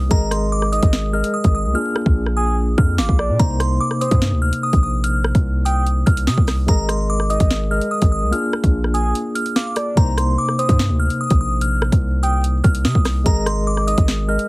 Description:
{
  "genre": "hip hop, drill",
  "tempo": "146 BPM",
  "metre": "4/4",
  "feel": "half-time",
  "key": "C minor",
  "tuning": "A4 = 439 Hz",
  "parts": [
    { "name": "glassy synth bell", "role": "melody", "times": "0.0-14.5 s", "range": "Bb5 to F6", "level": "-24 LUFS", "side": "equal", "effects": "chorus, phaser, slapback echo" },
    { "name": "tine electric piano", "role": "accompaniment", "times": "0.0-14.5 s", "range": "C3 to Eb5", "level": "-24 LUFS", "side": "left 1 dB", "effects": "overdrive, medium tremolo" },
    { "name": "hard-hitting 808-style bass", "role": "bass", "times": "0.0-14.4 s", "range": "Ab1 to C3", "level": "-19 LUFS", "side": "equal", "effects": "none" },
    { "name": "drill drum kit", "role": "drums", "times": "0.1-14.5 s", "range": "hi-hat, kick drum, rim click, snare drum", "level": "-17 LUFS", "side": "equal", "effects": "none" },
    { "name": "soft octave-layered synth lead", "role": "second line", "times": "0.7-14.1 s", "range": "C5 to Ab5", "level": "-25 LUFS", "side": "right 1 dB", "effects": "chorus, slapback echo" }
  ],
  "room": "little or no reverb",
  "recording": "heavily compressed radio sound, vinyl crackle",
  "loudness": "-15 LUFS",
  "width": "side -23 dB against mid",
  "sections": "0.0-10.0 A section; 10.0-14.5 A section",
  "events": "hi-hats muted 1.8-3.4; break 9.1-10.0",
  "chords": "0.1 Absus2; 1.8 Bb7; 3.4 Cm7; 6.7 Absus2; 8.3 Bb7; 10.0 Cm7; 13.3 Absus2"
}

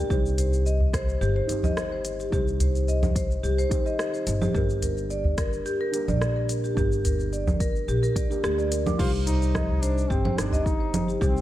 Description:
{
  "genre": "organic downtempo",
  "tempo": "108 BPM",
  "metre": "4/4",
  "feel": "straight",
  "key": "unclear",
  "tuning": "A4 = 443 Hz",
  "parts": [
    { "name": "muted felt-like synth keys", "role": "accompaniment", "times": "0.0-11.4 s", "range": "D4 to C5", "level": "-34 LUFS", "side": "right 2 dB", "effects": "chorus, vintage 12-bit sampler grit, sidechain pumping, tape echo" },
    { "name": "marimba with medium mallets", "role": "arpeggios", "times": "0.0-11.4 s", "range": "G4 to D6", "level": "-29 LUFS", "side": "left 1 dB", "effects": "tape echo" },
    { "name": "upright bass", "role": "bass", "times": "0.0-11.4 s", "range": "G1 to D2", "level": "-26 LUFS", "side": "equal", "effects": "sidechain pumping" },
    { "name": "electronic kick drum", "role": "drums", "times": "0.1-11.3 s", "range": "none", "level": "-27 LUFS", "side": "equal", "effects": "overdrive, studio reverb" },
    { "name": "organic electronic drum kit", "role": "drums", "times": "0.1-11.4 s", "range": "congas, crash cymbal, hi-hat, rim click, shaker", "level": "-31 LUFS", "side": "right 2 dB", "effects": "overdrive, studio reverb" },
    { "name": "udu", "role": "percussion", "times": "0.4-10.6 s", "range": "none", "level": "-28 LUFS", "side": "equal", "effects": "none" },
    { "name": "mellow duduk", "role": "melody", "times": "9.0-11.4 s", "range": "C4 to F4", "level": "-32 LUFS", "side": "right 1 dB", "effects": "tape echo" }
  ],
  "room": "light reverb, small room ambience",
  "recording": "dark, warm production",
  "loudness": "-22 LUFS",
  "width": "side -14 dB against mid",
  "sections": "0.0-9.0 A section; 9.0-11.4 B section",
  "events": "none",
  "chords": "0.1 Cm; 4.5 Gm; 9.0 Cm"
}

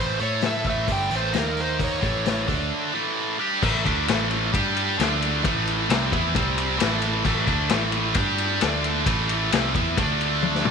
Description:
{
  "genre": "blues rock power trio and southern rock",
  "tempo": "132 BPM",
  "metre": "4/4",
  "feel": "straight",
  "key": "unclear",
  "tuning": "A4 = 440 Hz",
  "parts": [
    { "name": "overdriven slide guitar", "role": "melody", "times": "0.0-2.5 s", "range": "A#4 to G5", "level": "-28 LUFS", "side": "right 1 dB", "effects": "slapback echo" },
    { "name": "tight distorted guitar", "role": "riff", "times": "0.0-10.7 s", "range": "G2 to A4", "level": "-23 LUFS", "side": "right 1 dB", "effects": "distortion" },
    { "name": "vintage muted picked electric bass", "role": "bass", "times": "0.0-10.7 s", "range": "G1 to A2", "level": "-28 LUFS", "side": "right 2 dB", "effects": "none" },
    { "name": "vintage drum kit", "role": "drums", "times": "0.2-10.7 s", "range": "crash cymbal, hi-hat, kick drum, ride cymbal, snare drum, toms", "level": "-26 LUFS", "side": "left 4 dB", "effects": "none" }
  ],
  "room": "moderate echo chamber reverb, RT60 2.3 s",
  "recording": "1960s-style stereo",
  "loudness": "-20 LUFS",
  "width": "side -6 dB against mid",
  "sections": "0.0-3.6 A section; 3.6-10.7 B section",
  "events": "drum fill 10.4",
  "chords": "0.0 A5; 1.3 D#5; 2.0 A; 2.5 D5; 2.9 A5; 4.5 G5; 5.0 D5; 5.4 A5; 6.4 C5; 6.8 A5; 8.2 G5; 8.6 D5; 9.1 A5; 10.0 D5"
}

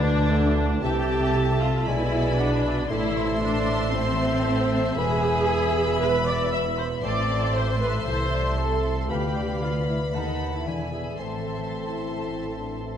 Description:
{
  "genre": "classical, dramatic, fast romantic movement for symphony orchestra",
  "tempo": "116 BPM",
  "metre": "4/4",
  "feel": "straight",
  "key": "A minor",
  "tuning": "A4 = 440 Hz",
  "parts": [
    { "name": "warm symphonic violin section", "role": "melody", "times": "0.0-13.0 s", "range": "D4 to C6", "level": "-35 LUFS", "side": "left 2 dB", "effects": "none" },
    { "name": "dark cor anglais", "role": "second line", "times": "0.0-13.0 s", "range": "B4 to A5", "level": "-36 LUFS", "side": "right 2 dB", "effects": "none" },
    { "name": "large flute ensemble", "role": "second line", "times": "0.0-13.0 s", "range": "C5 to E6", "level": "-33 LUFS", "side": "left 1 dB", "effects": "none" },
    { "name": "warm clarinet", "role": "second line", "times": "0.0-13.0 s", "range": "D4 to A5", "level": "-37 LUFS", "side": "equal", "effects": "none" },
    { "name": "warm studio violin section", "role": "second line", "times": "0.0-13.0 s", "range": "D4 to B5", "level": "-37 LUFS", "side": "left 3 dB", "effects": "none" },
    { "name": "dark bassoon", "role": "accompaniment", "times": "0.0-13.0 s", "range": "D3 to D4", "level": "-33 LUFS", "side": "right 4 dB", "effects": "none" },
    { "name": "dark symphonic viola section", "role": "accompaniment", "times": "0.0-13.0 s", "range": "C4 to E5", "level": "-28 LUFS", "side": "right 1 dB", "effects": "none" },
    { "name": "dark French horn section", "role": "sustained chords", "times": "0.0-13.0 s", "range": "D3 to A4", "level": "-38 LUFS", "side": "left 3 dB", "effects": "none" },
    { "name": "concert harp", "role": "arpeggios", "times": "0.0-13.0 s", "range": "E2 to B4", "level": "-32 LUFS", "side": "left 7 dB", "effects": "none" },
    { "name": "dark symphonic cello section", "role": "bass", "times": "0.0-13.0 s", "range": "C2 to C3", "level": "-30 LUFS", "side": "equal", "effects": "none" },
    { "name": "warm studio double bass section", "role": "bass", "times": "0.0-13.0 s", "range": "E1 to D#2", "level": "-29 LUFS", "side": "right 2 dB", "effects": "none" }
  ],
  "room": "moderate concert hall reverb, RT60 1.9 s",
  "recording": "none",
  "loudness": "-22 LUFS",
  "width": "side -9 dB against mid",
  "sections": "0.0-13.0 A section",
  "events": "none",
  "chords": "0.0 E7; 0.8 Am/C; 1.9 G#dim/B; 2.9 Am; 5.0 E; 7.0 Am; 8.1 Am/C; 9.1 Bdim/D; 10.1 B7/D#; 10.7 E7; 11.2 Am"
}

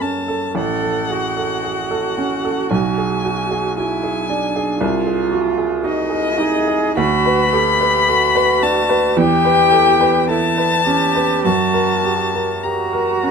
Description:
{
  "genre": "classical, slow romantic movement for piano trio",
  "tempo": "50-59 BPM",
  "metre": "4/4",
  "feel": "rubato",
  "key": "B minor from 7.0 s",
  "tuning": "A4 = 445 Hz",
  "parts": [
    { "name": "muted violin", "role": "melody", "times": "0.0-13.3 s", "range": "D#5 to B5", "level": "-18 LUFS", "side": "left 7 dB", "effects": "none" },
    { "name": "clear baby grand piano", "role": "accompaniment", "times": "0.0-13.3 s", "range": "A1 to B4", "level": "-19 LUFS", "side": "right 2 dB", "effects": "none" },
    { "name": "muted cello", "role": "second line", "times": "0.6-13.3 s", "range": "D4 to A4", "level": "-21 LUFS", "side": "right 7 dB", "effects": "none" }
  ],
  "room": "moderate studio reverb, RT60 0.7 s",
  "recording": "none",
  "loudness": "-14 LUFS",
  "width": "side -6 dB against mid",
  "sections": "0.0-13.3 A section",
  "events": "none",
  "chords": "0.0 F#m; 0.6 F#m/A; 2.7 G#dim/B; 4.8 G#7/B#; 7.0 Bm/D; 9.2 C#m7b5/E; 11.5 F#"
}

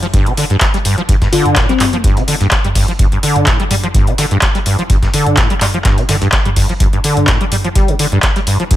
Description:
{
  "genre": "acid house",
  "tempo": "126 BPM",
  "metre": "4/4",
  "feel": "swing 54% on 16ths",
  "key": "unclear",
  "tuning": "A4 = 440 Hz",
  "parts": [
    { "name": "acid bass, saw", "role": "riff", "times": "0.0-8.8 s", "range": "G2 to G3", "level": "-15 LUFS", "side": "equal", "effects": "overdrive, ensemble chorus, sidechain pumping, ping-pong delay" },
    { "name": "booming analog drum machine", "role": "drums", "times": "0.0-8.8 s", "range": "handclaps, hi-hat, toms", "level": "-16 LUFS", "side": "equal", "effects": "none" },
    { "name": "breakbeat sampler-style drum kit", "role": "drums", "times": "0.1-8.8 s", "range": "hi-hat, snare drum", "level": "-27 LUFS", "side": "right 1 dB", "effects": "none" },
    { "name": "electronic kick drum", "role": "drums", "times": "0.1-8.8 s", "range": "none", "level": "-14 LUFS", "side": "equal", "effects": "overdrive" },
    { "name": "bell-like FM electric piano", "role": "melody", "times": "1.3-2.0 s", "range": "C4 to F4", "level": "-18 LUFS", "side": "left 7 dB", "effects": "chorus, cassette tape, tape echo" }
  ],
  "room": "little or no reverb",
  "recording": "none",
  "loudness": "-10 LUFS",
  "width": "side -13 dB against mid",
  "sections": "0.0-8.8 A section",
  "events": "none",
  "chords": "0.0 G5"
}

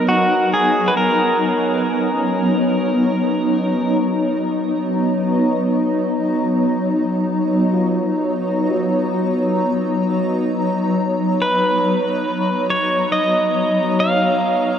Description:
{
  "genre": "ambient",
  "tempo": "69 BPM",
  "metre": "4/4",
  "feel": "straight",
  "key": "B lydian",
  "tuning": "A4 = 440 Hz",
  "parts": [
    { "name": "pedal steel guitar", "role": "melody", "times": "0.0-4.0, 11.4-14.8 s", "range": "F#4 to E#5", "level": "-18 LUFS", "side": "equal", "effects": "diffuse ambient delay" },
    { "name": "granular cloud pad", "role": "sustained chords", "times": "0.0-14.8 s", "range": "F#3 to A#5", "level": "-17 LUFS", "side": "equal", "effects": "built-in reverb" },
    { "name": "felt-muted upright piano", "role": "arpeggios", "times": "0.0-14.8 s", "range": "B3 to F#4", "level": "-34 LUFS", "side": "equal", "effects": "none" }
  ],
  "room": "wet huge ambient reverb, RT60 8.9 s",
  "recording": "none",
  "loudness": "-16 LUFS",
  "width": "side -8 dB against mid",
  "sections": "0.0-14.8 A section",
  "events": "none",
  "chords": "0.0 Bmaj9"
}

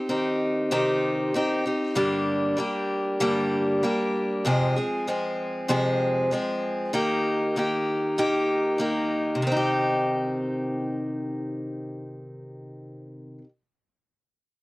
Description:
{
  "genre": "rock",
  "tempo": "96 BPM",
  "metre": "4/4",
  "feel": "straight",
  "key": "C minor",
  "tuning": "A4 = 438 Hz",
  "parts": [
    { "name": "picked acoustic archtop guitar", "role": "solo", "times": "0.0-13.5 s", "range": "F2 to Ab4", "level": "-23 LUFS", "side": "equal", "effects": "none" }
  ],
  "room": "little or no reverb",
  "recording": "dry, close 1970s-style studio recording",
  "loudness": "-23 LUFS",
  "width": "side -21 dB against mid",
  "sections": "0.0-9.4 A section; 9.4-11.9 B section",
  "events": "none",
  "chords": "0.0 Cm; 1.9 Gm; 4.4 Fm; 6.9 Eb; 9.4 Cm"
}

